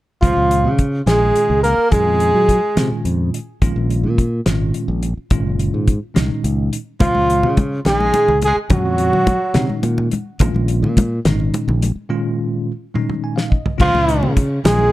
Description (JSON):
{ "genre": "electric jazz fusion", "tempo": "71 BPM (dotted quarters)", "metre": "6/8", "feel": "straight", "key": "Db major", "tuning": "A4 = 440 Hz", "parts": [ { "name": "trumpet with bucket mute", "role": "melody", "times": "0.2-3.0, 7.0-9.8, 13.8-14.9 s", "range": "F4 to Bb4", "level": "-17 LUFS", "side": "equal", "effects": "none" }, { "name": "growling tenor saxophone", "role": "second line", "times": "0.2-3.0, 7.0-9.8, 13.8-14.9 s", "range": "F3 to Bb3", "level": "-24 LUFS", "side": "right 4 dB", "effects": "none" }, { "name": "bell-like tine electric piano", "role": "accompaniment", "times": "0.2-14.9 s", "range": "Bb2 to Ab5", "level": "-22 LUFS", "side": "equal", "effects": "fast stereo tremolo" }, { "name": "modern bright fingered electric bass", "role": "bass", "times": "0.2-14.9 s", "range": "Gb1 to Gb3", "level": "-19 LUFS", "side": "equal", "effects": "none" }, { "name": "damped 70s drum kit", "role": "drums", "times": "0.2-14.8 s", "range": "crash cymbal, hi-hat, kick drum, snare drum, toms", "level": "-18 LUFS", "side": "equal", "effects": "none" }, { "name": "congas", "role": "percussion", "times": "7.0-14.9 s", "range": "none", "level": "-22 LUFS", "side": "left 2 dB", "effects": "none" } ], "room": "moderate studio reverb, RT60 0.9 s", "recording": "dark, warm production", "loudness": "-15 LUFS", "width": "side -16 dB against mid", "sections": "0.2-13.8 A section; 13.8-14.9 A section", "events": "break 12.1-13.8; drum fill 13.0-13.8; tine electric piano fill 13.0-13.8", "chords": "0.2 Db6; 1.9 Gbmaj9; 3.6 Bbm7; 5.3 Ab9sus4; 7.0 Db6; 8.7 Gbmaj9; 10.4 Bbm7; 12.1 Dbadd9", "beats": "| 0.23 1.07 | 1.92 2.77 | 3.62 4.47 | 5.32 6.16 | 7.01 7.86 | 8.71 9.56 | 10.41 11.26 | 12.10 12.95 | 13.80 14.65" }